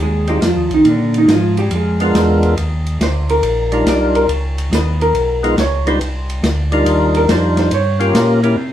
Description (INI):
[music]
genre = soul jazz organ trio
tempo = 140 BPM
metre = 4/4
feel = swing 67% on 8ths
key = C minor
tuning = A4 = 440 Hz
[part]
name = vintage hollow-body jazz guitar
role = accompaniment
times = 0.0-8.1 s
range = D3 to D5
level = -16 LUFS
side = right 1 dB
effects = none
[part]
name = tonewheel organ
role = bass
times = 0.0-8.7 s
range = Bb1 to C3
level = -17 LUFS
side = equal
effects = overdrive, slow rotary speaker
[part]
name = percussive tonewheel organ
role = melody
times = 0.3-8.6 s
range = G3 to C5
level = -16 LUFS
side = equal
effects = slow rotary speaker, overdrive
[part]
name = vintage drum kit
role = drums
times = 0.3-8.5 s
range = hi-hat, ride cymbal, snare drum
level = -22 LUFS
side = equal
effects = none
[sound]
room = wet studio reverb, RT60 0.6 s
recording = heard from further back in the room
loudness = -12 LUFS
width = side -11 dB against mid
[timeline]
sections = 0.0-8.7 A section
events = hollow-body jazz guitar solo 0.0-8.7; drum fill 8.6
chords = 0.0 Fm7; 0.8 Bb7b9; 2.6 Ebmaj9; 4.3 Db13; 6.0 Cm11; 7.7 Gm7b5